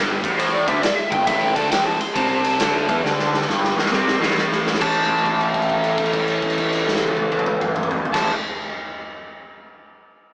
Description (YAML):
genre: blues rock power trio and southern rock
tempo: 136 BPM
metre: 4/4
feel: swing 65% on 8ths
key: A minor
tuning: A4 = 440 Hz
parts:
  - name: overdriven slide guitar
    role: melody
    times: 0.0-8.3 s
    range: C5 to C6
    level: -23 LUFS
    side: equal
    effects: none
  - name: raw garage guitar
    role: riff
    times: 0.0-8.3 s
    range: G2 to A3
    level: -22 LUFS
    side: equal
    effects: overdrive, phaser
  - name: fuzz picked electric bass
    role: bass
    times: 0.0-8.3 s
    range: G1 to E2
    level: -25 LUFS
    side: equal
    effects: overdrive
  - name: raw garage drum kit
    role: drums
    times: 0.2-8.2 s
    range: crash cymbal, kick drum, ride cymbal, snare drum, toms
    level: -22 LUFS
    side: equal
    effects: none
room: moderate stone room reverb, RT60 1.4 s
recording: band playing live in one room, small speaker sound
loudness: -17 LUFS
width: side -34 dB against mid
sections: 0.0-4.8 A section; 4.8-8.4 B section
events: drum fill 3.0-4.8; held note 4.8-8.1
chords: 0.0 Am; 4.8 A5